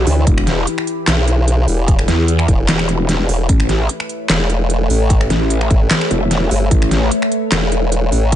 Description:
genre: heavy wobble dubstep.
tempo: 149 BPM.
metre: 4/4.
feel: swing 53% on 16ths, half-time.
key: unclear.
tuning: A4 = 440 Hz.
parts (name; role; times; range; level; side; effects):
evolving wavetable pad; sustained chords; 0.0-8.4 s; E3 to B5; -22 LUFS; left 1 dB; chorus, built-in reverb, sidechain pumping.
growl bass; bass; 0.0-7.1 s; E1 to E2; -16 LUFS; equal; chorus, overdrive.
formant-sweep wobble bass; bass; 0.1-8.4 s; E1 to D2; -15 LUFS; equal; chorus, overdrive.
dubstep drum kit; drums; 0.1-8.4 s; finger snaps, handclaps, hi-hat, snare drum; -19 LUFS; equal; none.
electronic kick drum; drums; 0.3-8.4 s; none; -14 LUFS; equal; none.
room: little or no reverb.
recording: nothing above 10.3 kHz.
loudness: -13 LUFS.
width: side -11 dB against mid.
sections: 0.0-8.4 A section.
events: none.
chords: 0.0 Em; 3.5 Aadd9.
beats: | 0.27 0.67 1.07 1.48 | 1.88 2.28 2.69 3.09 | 3.49 3.89 4.30 4.70 | 5.10 5.50 5.91 6.31 | 6.71 7.12 7.52 7.92 | 8.32.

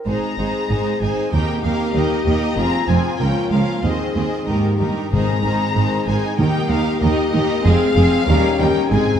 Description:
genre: quick classical-period movement for symphony orchestra.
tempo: 95 BPM.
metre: 2/4.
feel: straight.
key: Ab major.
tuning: A4 = 439 Hz.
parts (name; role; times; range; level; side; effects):
rich studio violin section; melody; 0.1-9.2 s; Eb5 to Bb5; -26 LUFS; left 4 dB; none.
rich studio violin section; second line; 0.1-9.2 s; Eb4 to C5; -26 LUFS; left 2 dB; none.
rich studio viola section; accompaniment; 0.1-9.2 s; Eb3 to Eb4; -23 LUFS; right 3 dB; none.
mellow French horn section; sustained chords; 0.1-9.2 s; Bb3 to Ab4; -23 LUFS; left 5 dB; none.
rich studio double bass section; bass; 0.1-9.0 s; F1 to Eb2; -23 LUFS; right 2 dB; none.
warm studio cello section; bass; 0.1-9.0 s; Db2 to Ab2; -22 LUFS; right 2 dB; none.
timpani; percussion; 1.3-2.2, 5.1-9.2 s; Ab2 to Eb3; -24 LUFS; equal; none.
room: wet scoring stage reverb, RT60 1.8 s.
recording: dark, warm production.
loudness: -16 LUFS.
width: side -8 dB against mid.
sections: 0.1-9.2 A section.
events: timpani fill 8.9.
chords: 0.1 Ab; 1.3 Eb; 2.6 Fm; 3.2 Bbm; 3.8 Ab/Eb; 4.5 Eb; 5.1 Ab; 6.4 Eb; 7.7 Fm; 8.3 Eb7.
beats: | 0.07 0.71 | 1.34 1.96 | 2.58 3.21 | 3.84 4.49 | 5.13 5.76 | 6.39 7.02 | 7.65 8.28 | 8.92.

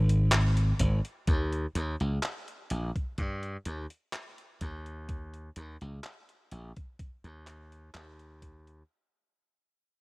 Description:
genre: vaporwave.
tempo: 63 BPM.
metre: 4/4.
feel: straight.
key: unclear.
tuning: A4 = 439 Hz.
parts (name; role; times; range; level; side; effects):
glassy slap bass; bass; 0.0-8.8 s; Ab1 to G2; -29 LUFS; equal; low-pass filter.
detuned 8-bit digital drum machine; drums; 0.1-8.9 s; handclaps, hi-hat; -32 LUFS; equal; studio ambience.
electronic kick drum; drums; 0.8-8.6 s; none; -32 LUFS; equal; studio ambience.
room: digital ambience.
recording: rough home demo mix.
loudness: -28 LUFS.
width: side -27 dB against mid.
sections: 0.0-8.9 A section.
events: fade-out 0.0-8.9.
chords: none.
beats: 0.32 | 1.28 2.23 3.18 4.13 | 5.09 6.04 6.99 7.94.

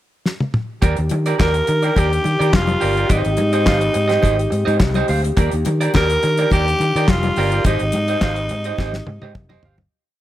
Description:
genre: disco.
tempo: 106 BPM.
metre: 4/4.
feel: straight.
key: Eb major.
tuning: A4 = 440 Hz.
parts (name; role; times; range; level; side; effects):
damped 70s drum kit; drums; 0.3-9.9 s; handclaps, hi-hat, kick drum, snare drum, toms; -20 LUFS; equal; none.
electric guitar at the edge of break-up; accompaniment; 0.8-9.8 s; G4 to F5; -23 LUFS; right 5 dB; none.
mellow French horn section; sustained chords; 0.8-9.9 s; Eb3 to G4; -26 LUFS; left 2 dB; stereo widening.
fingered electric bass; bass; 0.8-9.8 s; F1 to Eb3; -20 LUFS; equal; none.
congas; percussion; 0.8-9.9 s; none; -27 LUFS; left 4 dB; none.
raspy tenor saxophone; melody; 1.4-9.6 s; Eb4 to Bb4; -20 LUFS; equal; none.
room: studio ambience.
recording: none.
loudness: -15 LUFS.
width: side -13 dB against mid.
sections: 0.0-0.8 pickup bar; 0.8-9.9 groove.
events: drum fill 0.3-0.8, 8.8-9.9; fade-out 7.6-9.9.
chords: 0.0 N.C.; 0.8 Ebmaj7; 3.1 Abmaj7; 5.4 Ebmaj7; 7.6 Abmaj7.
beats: 0.25 | 0.82 1.39 1.96 2.53 | 3.10 3.67 4.24 4.81 | 5.37 5.94 6.51 7.08 | 7.65 8.21 8.78 9.35.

